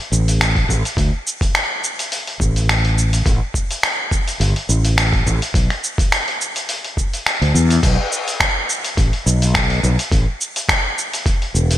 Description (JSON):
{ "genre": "organic downtempo", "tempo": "105 BPM", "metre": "4/4", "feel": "swing 54% on 16ths", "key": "unclear", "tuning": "A4 = 440 Hz", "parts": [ { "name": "fretless electric bass", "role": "bass", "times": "0.1-11.8 s", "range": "E1 to E2", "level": "-16 LUFS", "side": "equal", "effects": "lush chorus, sidechain pumping" }, { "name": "dusty soul sampler-style drum kit", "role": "drums", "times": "0.1-11.8 s", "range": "crash cymbal, finger snaps, hi-hat, shaker", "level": "-19 LUFS", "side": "equal", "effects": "gated reverb" }, { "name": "electronic kick drum", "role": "drums", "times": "0.6-11.4 s", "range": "none", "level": "-19 LUFS", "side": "equal", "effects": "none" } ], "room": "light reverb", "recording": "bright 1980s-style digital production", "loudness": "-15 LUFS", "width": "side -13 dB against mid", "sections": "0.0-7.8 A section; 7.8-11.8 B section", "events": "none", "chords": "none" }